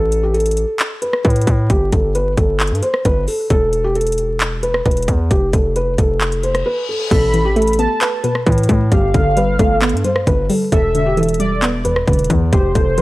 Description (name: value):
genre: hip hop, trap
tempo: 133 BPM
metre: 4/4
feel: half-time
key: A minor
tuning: A4 = 438 Hz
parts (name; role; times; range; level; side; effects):
- felt-muted upright piano; melody; 0.0-13.0 s; G4 to C5; -19 LUFS; equal; tape echo
- distorted 808-style bass; bass; 0.0-13.0 s; E1 to A2; -18 LUFS; equal; distortion
- trap drum kit; drums; 0.1-13.0 s; crash cymbal, handclaps, hi-hat, kick drum, rim click; -18 LUFS; equal; none
- reverse cymbal; sound effects; 6.4-7.1 s; none; -28 LUFS; left 6 dB; none
- warm velvety synth lead; second line; 7.1-13.0 s; C5 to B5; -22 LUFS; right 1 dB; chorus, tape echo
- hollow square pluck; accompaniment; 7.1-13.0 s; E2 to B4; -19 LUFS; equal; chorus
room: little or no reverb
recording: dry, gritty hardware recording, transformer saturation, vinyl crackle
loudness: -13 LUFS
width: side -18 dB against mid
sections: 0.0-7.1 A section; 7.1-13.0 B section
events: reverse cymbal 6.4-7.1; break 6.7-7.1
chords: 0.0 Asus2; 1.7 Gsus2; 3.5 E5; 5.3 F; 7.1 Asus2; 8.9 Gadd9; 10.7 Em7